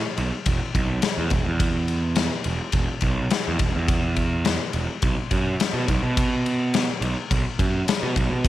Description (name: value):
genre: blues rock power trio and southern rock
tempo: 105 BPM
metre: 4/4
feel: straight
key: unclear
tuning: A4 = 443 Hz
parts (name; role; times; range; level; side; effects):
- fuzz picked electric bass; bass; 0.2-8.5 s; E1 to B2; -24 LUFS; right 2 dB; overdrive
- big rock drum kit; drums; 0.2-8.5 s; kick drum, ride cymbal, snare drum; -23 LUFS; left 1 dB; none
room: little or no reverb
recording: 1960s-style stereo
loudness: -21 LUFS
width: side -14 dB against mid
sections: 0.0-8.5 A section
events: none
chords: none